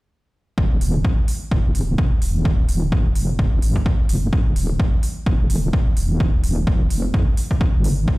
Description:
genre	bass house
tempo	128 BPM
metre	4/4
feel	swing 57% on 16ths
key	F minor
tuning	A4 = 440 Hz
part	dark analog pad	sustained chords	1.4-8.2 s	Ab3 to C5	-50 LUFS	right 3 dB	none
part	wobble bass	bass	0.6-8.2 s	Eb1 to F2	-20 LUFS	equal	chorus, overdrive, sidechain pumping
part	electronic kick drum	drums	0.6-8.2 s	none	-18 LUFS	equal	overdrive
part	electronic hi-hat	drums	0.8-7.9 s	none	-33 LUFS	right 2 dB	overdrive
room	little or no reverb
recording	played on a big sound system in a bare room, large studio reverb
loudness	-17 LUFS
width	side -20 dB against mid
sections	0.6-8.2 A section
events	none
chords	0.6 Fm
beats	| 0.58 1.04 1.51 1.98 | 2.45 2.92 3.39 3.86 | 4.33 4.79 5.26 5.73 | 6.20 6.67 7.14 7.61 | 8.08

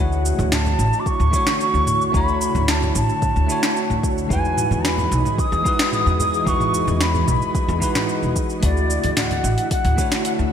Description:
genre	sunset chillout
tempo	111 BPM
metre	4/4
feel	straight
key	D major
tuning	A4 = 441 Hz
part	mellow jazz flute	melody	0.0-10.3 s	D5 to D#6	-23 LUFS	left 1 dB	ping-pong delay
part	bell-like tine electric piano	accompaniment	0.0-10.5 s	G#3 to D5	-26 LUFS	moving between left 3 dB and right 3 dB	fast stereo tremolo, auto-pan, low-pass filter
part	ethereal airy pad	sustained chords	0.0-10.5 s	D3 to E5	-28 LUFS	right 2 dB	ensemble chorus, built-in reverb
part	upright bass	bass	0.0-10.5 s	E1 to E2	-21 LUFS	equal	none
part	smooth R&B drum kit	drums	0.1-10.5 s	hi-hat, shaker, snare drum, toms	-24 LUFS	right 1 dB	overdrive, gated reverb
part	congas	percussion	0.4-9.4 s	none	-30 LUFS	right 3 dB	none
part	electronic kick drum	drums	1.1-10.1 s	none	-24 LUFS	equal	overdrive
room	moderate lush hall reverb, RT60 2.6 s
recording	bright 1980s-style digital production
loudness	-17 LUFS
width	side -8 dB against mid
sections	0.0-10.5 A section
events	none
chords	0.0 Dmaj9; 4.3 Emaj9; 8.6 Dmaj9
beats	0.52 1.06 1.60 | 2.14 2.68 3.22 3.76 | 4.30 4.84 5.38 5.93 | 6.47 7.01 7.55 8.09 | 8.63 9.17 9.71 10.25

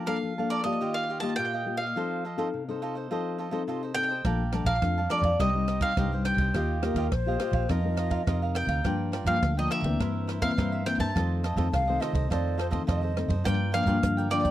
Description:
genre	samba and choro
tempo	104 BPM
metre	4/4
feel	straight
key	unclear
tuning	A4 = 440 Hz
part	mandolin	melody	0.0-14.5 s	D5 to A5	-30 LUFS	right 1 dB	slapback echo
part	cavaquinho	accompaniment	0.0-14.5 s	Eb4 to A5	-35 LUFS	right 6 dB	none
part	nylon-string guitar	accompaniment	0.0-14.5 s	F2 to Bb4	-30 LUFS	left 4 dB	none
part	vintage muted fingered electric bass	bass	4.2-14.5 s	Bb1 to G2	-29 LUFS	right 1 dB	none
part	compact cocktail drum kit	drums	4.2-14.5 s	hi-hat, kick drum, ride cymbal, rim click	-31 LUFS	right 1 dB	none
part	breathy mellow jazz flute	second line	6.8-13.4 s	Bb4 to F5	-32 LUFS	equal	none
room	light reverb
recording	dry, close 1970s-style studio recording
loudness	-25 LUFS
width	side -13 dB against mid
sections	0.0-13.5 A section; 13.5-14.5 B section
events	none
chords	0.0 Bbmaj7/F; 0.8 Ebadd9; 2.0 F7; 4.2 Bbmaj7; 5.4 Cm; 6.5 Ebadd9; 7.7 F7sus4; 8.8 Gm7; 10.0 C7/G; 11.2 F7; 13.5 Gm7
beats	0.23 0.81 1.38 | 1.95 2.53 3.10 3.67 | 4.25 4.82 5.40 5.97 | 6.54 7.12 7.70 8.27 | 8.85 9.42 10.00 10.57 | 11.15 11.73 12.30 12.88 | 13.46 14.03

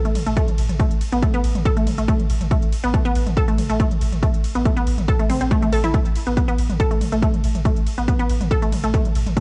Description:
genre	driving peak-time techno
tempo	140 BPM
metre	4/4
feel	straight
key	unclear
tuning	A4 = 440 Hz
part	resonant blip pluck	riff	0.1-9.4 s	A3 to A4	-26 LUFS	equal	chorus, sidechain pumping, cassette tape, tape echo
part	warm sub bass	bass	0.1-9.4 s	A1	-27 LUFS	equal	tube saturation, sidechain pumping, low-pass filter
part	techno drum kit	drums	0.1-9.4 s	hi-hat, ride cymbal, toms	-32 LUFS	equal	overdrive, cassette tape
part	electronic kick drum	drums	0.4-9.4 s	none	-22 LUFS	equal	overdrive, cassette tape
room	little or no reverb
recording	home recording on cassette, nothing above 10.3 kHz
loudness	-20 LUFS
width	mono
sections	0.0-9.4 A section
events	none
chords	none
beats	0.37 | 0.80 1.23 1.65 2.08 | 2.51 2.94 3.37 3.80 | 4.22 4.65 5.08 5.51 | 5.94 6.37 6.80 7.22 | 7.65 8.08 8.51 8.94 | 9.37

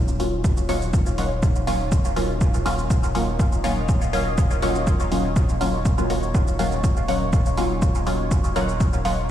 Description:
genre	dub techno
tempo	122 BPM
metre	4/4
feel	straight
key	Eb minor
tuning	A4 = 440 Hz
part	deep dark ambient pad	sustained chords	0.0-9.3 s	Eb4 to Eb5	-32 LUFS	equal	chorus, built-in reverb, sidechain pumping
part	filtered dub chord stab	stabs	0.0-9.2 s	Gb3 to F4	-25 LUFS	equal	chorus, phaser, sidechain pumping, dub echo
part	warm sub bass	bass	0.0-9.3 s	Eb1	-26 LUFS	equal	sidechain pumping
part	electronic shaker and hi-hat	drums	0.1-9.2 s	none	-37 LUFS	right 1 dB	overdrive
part	electronic kick drum	drums	0.4-8.9 s	none	-20 LUFS	equal	overdrive
part	filtered dub chord stab	riff	0.7-9.2 s	Bb4 to Gb5	-36 LUFS	left 1 dB	phaser, lush chorus, sidechain pumping, dub echo
room	light reverb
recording	played on a big sound system in a bare room, stone room reverb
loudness	-19 LUFS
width	side -11 dB against mid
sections	0.0-9.3 A section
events	none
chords	0.0 Ebm7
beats	| 0.44 0.94 1.43 1.92 | 2.41 2.90 3.40 3.89 | 4.38 4.87 5.36 5.85 | 6.35 6.84 7.33 7.82 | 8.31 8.80 9.30

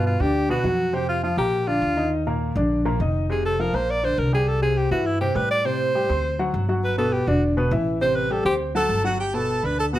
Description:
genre	jazz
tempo	204 BPM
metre	4/4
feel	straight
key	unclear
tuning	A4 = 440 Hz
part	clear alto saxophone	melody	0.0-10.0 s	E4 to D5	-23 LUFS	equal	none
part	warm concert grand piano	accompaniment	0.0-10.0 s	Bb2 to C6	-24 LUFS	left 1 dB	none
part	upright bass	bass	0.0-10.0 s	E1 to A2	-26 LUFS	equal	none
part	clear harmonica	second line	8.8-10.0 s	F#5 to B5	-29 LUFS	right 4 dB	none
room	light reverb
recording	none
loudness	-20 LUFS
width	side -14 dB against mid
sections	0.0-9.2 A section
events	alto saxophone solo 0.0-9.2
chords	0.0 Gmaj7; 0.9 F5; 1.5 Bb; 2.1 Ebsus2; 3.3 F5; 3.9 Bbadd9; 4.5 C; 5.7 Am7; 6.2 D7; 6.8 Gmaj7; 7.4 E5; 8.0 Am7; 8.6 D7; 9.2 Gadd9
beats	0.05 0.34 0.64 | 0.94 1.23 1.52 1.82 | 2.11 2.41 2.70 3.00 | 3.29 3.59 3.88 4.18 | 4.47 4.77 5.06 5.36 | 5.65 5.95 6.24 6.54 | 6.83 7.13 7.42 7.72 | 8.01 8.31 8.60 8.90 | 9.19 9.49 9.78

